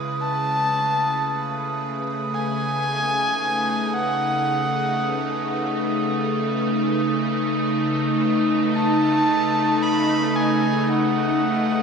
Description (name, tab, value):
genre	ambient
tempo	free time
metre	none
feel	none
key	unclear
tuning	A4 = 440 Hz
part	evolving wavetable pad	sustained chords	0.0-11.8 s	C#3 to B4	-22 LUFS	left 1 dB	chorus, built-in reverb
part	glass harmonica	texture	0.0-11.8 s	D#6	-29 LUFS	right 6 dB	none
part	clear electric violin	melody	0.2-11.8 s	F#5 to B5	-24 LUFS	equal	analog delay
room	wet spring reverb, RT60 2.7 s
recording	echo-heavy mix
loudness	-19 LUFS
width	side -6 dB against mid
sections	0.0-11.8 A section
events	none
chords	0.2 B9/C#